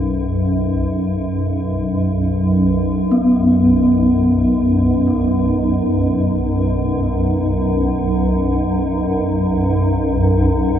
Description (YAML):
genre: dark ambient drone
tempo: free time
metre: none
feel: none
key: unclear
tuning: A4 = 440 Hz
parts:
  - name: swarming drone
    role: drone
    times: 0.0-10.8 s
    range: B1 to F#2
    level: -16 LUFS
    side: equal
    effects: built-in reverb
  - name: gamelan-type bronze metallophone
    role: arpeggios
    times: 3.1-10.8 s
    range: B3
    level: -18 LUFS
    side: equal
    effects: tape echo
room: wet cathedral reverb, RT60 5.5 s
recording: none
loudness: -14 LUFS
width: side -9 dB against mid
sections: 0.0-10.8 A section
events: none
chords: 0.0 B5